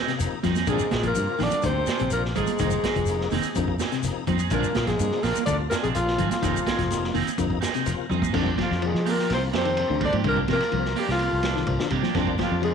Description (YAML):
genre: afrobeat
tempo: 126 BPM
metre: 4/4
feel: straight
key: F dorian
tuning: A4 = 441 Hz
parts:
  - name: electric guitar at the edge of break-up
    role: stabs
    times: 0.0-12.5 s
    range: Eb3 to Ab4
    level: -31 LUFS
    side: right 9 dB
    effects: analog chorus
  - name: electric guitar at the edge of break-up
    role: arpeggios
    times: 0.1-12.7 s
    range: C3 to F3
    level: -31 LUFS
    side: left 10 dB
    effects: vibrato effect
  - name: vintage drum kit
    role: drums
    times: 0.1-12.7 s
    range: crash cymbal, hi-hat, kick drum, ride cymbal, snare drum, toms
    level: -31 LUFS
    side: equal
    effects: none
  - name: shekere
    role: percussion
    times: 0.1-8.3 s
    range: none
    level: -36 LUFS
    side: left 4 dB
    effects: none
  - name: tonewheel organ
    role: accompaniment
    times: 0.2-12.7 s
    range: C3 to F4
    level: -35 LUFS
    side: left 10 dB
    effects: slow rotary speaker, chorus vibrato
  - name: fingered electric bass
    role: bass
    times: 0.2-12.7 s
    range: F1 to F3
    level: -28 LUFS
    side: equal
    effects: none
  - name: congas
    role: percussion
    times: 0.4-12.5 s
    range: none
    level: -32 LUFS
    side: right 13 dB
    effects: none
  - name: breathy alto saxophone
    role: melody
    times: 0.7-12.7 s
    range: F4 to D5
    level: -27 LUFS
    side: left 1 dB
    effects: none
  - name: growling trombone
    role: second line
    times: 0.7-12.7 s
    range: F3 to D4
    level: -35 LUFS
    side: right 8 dB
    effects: none
  - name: raspy baritone saxophone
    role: second line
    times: 0.7-12.7 s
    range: F2 to D3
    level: -35 LUFS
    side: left 9 dB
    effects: none
room: moderate echo chamber reverb, RT60 1.7 s, small room ambience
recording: 1960s-style stereo with parts hard left and right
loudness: -22 LUFS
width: side -6 dB against mid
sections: 0.0-8.3 A section; 8.3-12.7 B section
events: drum fill 8.1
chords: 0.0 Fm7; 0.7 Bb9; 2.6 Fm7; 4.5 Bb9; 6.4 Fm7; 8.3 Fm69; 10.2 Cm9; 12.2 Fm69